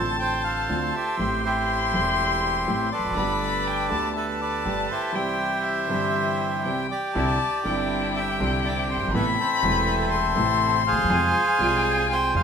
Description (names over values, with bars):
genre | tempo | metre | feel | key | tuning
tango | 121 BPM | 4/4 | rubato | C major | A4 = 440 Hz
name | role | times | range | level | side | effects
bandoneon | melody | 0.0-12.4 s | C4 to A5 | -25 LUFS | right 3 dB | none
warm violin | second line | 0.0-12.4 s | E5 to C6 | -27 LUFS | left 8 dB | none
warm concert grand piano | accompaniment | 0.0-12.4 s | E1 to B4 | -29 LUFS | equal | none
upright bass | bass | 0.0-12.4 s | E1 to F2 | -31 LUFS | right 1 dB | none
rich studio string section | stabs | 7.2-12.4 s | B3 to B4 | -32 LUFS | right 1 dB | none
room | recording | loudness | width
moderate large studio reverb, RT60 1.2 s | minimal, uncompressed stereo recording | -21 LUFS | side -7 dB against mid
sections
0.0-7.2 A section; 7.2-12.4 A section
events
none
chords
0.0 Dm7; 1.2 Am7; 3.2 Gadd9; 5.2 C; 7.2 Cadd9; 9.1 Amadd9; 11.1 Fm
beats
0.20 0.70 | 1.19 1.69 2.19 2.68 | 3.17 3.67 4.16 4.66 | 5.15 5.65 6.15 6.65 | 7.15 7.66 8.16 8.65 | 9.14 9.63 10.12 10.62 | 11.11 11.61 12.11